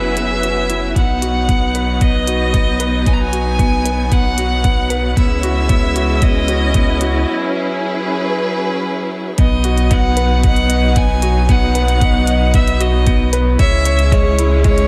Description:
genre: piano and strings electronica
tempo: 114 BPM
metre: 4/4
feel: straight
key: B major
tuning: A4 = 440 Hz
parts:
  - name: warm violin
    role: melody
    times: 0.0-14.9 s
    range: C#5 to A#5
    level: -23 LUFS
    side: equal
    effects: low-pass filter
  - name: warm studio string section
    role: sustained chords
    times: 0.0-14.9 s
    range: F#3 to B4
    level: -24 LUFS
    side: equal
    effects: low-pass filter
  - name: clear concert grand piano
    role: riff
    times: 0.0-14.9 s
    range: G#3 to D#5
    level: -23 LUFS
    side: equal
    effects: none
  - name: warm sub bass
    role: bass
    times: 0.0-14.9 s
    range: F#1 to C#2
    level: -20 LUFS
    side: equal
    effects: sidechain pumping
  - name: electronic hi-hat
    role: drums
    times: 0.2-14.9 s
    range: none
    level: -28 LUFS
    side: equal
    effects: overdrive
  - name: electronic kick drum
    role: drums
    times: 1.0-14.8 s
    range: none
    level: -17 LUFS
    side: equal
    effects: none
room: light reverb, small room reverb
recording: none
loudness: -15 LUFS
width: mono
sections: 0.0-9.4 A section; 9.4-14.9 B section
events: build-up 0.0-9.4; break 7.3-9.4; drop 9.4-14.9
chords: 0.0 F#7sus4; 1.0 B; 5.2 C#m; 7.3 F#7sus4; 9.4 B; 13.6 C#m

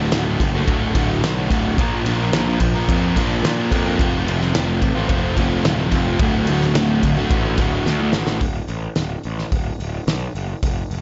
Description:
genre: quiet-loud alternative rock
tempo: 109 BPM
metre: 4/4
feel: straight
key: unclear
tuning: A4 = 440 Hz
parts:
  - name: fuzz guitar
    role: riff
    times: 0.0-8.4 s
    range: D2 to Bb4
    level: -23 LUFS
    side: equal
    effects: distortion
  - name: fuzz picked electric bass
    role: bass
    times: 0.0-11.0 s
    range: D1 to Bb2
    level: -25 LUFS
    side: equal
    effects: overdrive
  - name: loose indie drum kit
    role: drums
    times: 0.1-11.0 s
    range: hi-hat, kick drum, ride cymbal, snare drum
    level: -24 LUFS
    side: equal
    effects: none
room: light reverb, small room ambience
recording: nothing above 7.7 kHz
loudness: -19 LUFS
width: mono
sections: 0.0-8.4 A section; 8.4-11.0 B section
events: drum fill 7.9-8.4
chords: 0.0 D; 1.8 Bb; 4.0 F; 6.2 D; 8.4 D5

